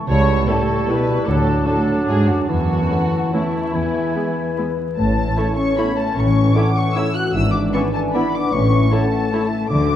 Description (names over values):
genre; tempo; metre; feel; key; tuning
classical, orchestral ballroom waltz; 138-165 BPM; 3/4; rubato; A major; A4 = 440 Hz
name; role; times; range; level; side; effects
mellow large flute ensemble; second line; 0.0-10.0 s; C#5 to D6; -30 LUFS; left 2 dB; none
concert harp; arpeggios; 0.0-10.0 s; G#2 to A5; -25 LUFS; left 5 dB; none
muted studio violin section; second line; 0.1-9.4 s; E4 to E5; -27 LUFS; equal; none
warm clarinet; second line; 0.1-9.5 s; D4 to E4; -28 LUFS; left 1 dB; none
warm oboe; second line; 0.1-9.5 s; C#5 to A5; -31 LUFS; right 2 dB; none
mellow bassoon; accompaniment; 0.1-9.5 s; E3 to B3; -27 LUFS; right 2 dB; none
muted studio cello section; bass; 0.1-10.0 s; E2 to D3; -24 LUFS; right 1 dB; none
muted studio double bass section; bass; 0.1-10.0 s; G#1 to E2; -22 LUFS; right 1 dB; none
muted studio violin section; melody; 0.5-10.0 s; E4 to F#6; -26 LUFS; left 3 dB; none
muted studio viola section; accompaniment; 0.5-9.4 s; G#3 to E4; -31 LUFS; right 2 dB; none
mellow French horn section; sustained chords; 0.5-10.0 s; G#3 to G4; -24 LUFS; left 3 dB; none
clear trombone section; sustained chords; 5.0-10.0 s; E3 to D4; -27 LUFS; right 4 dB; none
room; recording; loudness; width
wet concert hall reverb, RT60 2.2 s; dark, warm production, vinyl crackle; -16 LUFS; side -10 dB against mid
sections
0.0-5.0 A section; 5.0-10.0 B section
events
none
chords
0.1 A7/C#; 1.3 D; 2.5 A/E; 3.7 E; 5.0 A; 7.3 E7/G#; 8.5 A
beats
| 0.08 0.47 0.88 | 1.27 1.66 2.08 | 2.49 2.90 3.33 | 3.74 4.14 4.57 | 4.97 5.37 5.78 | 6.16 6.55 6.96 | 7.35 7.74 8.14 | 8.53 8.92 9.33 | 9.71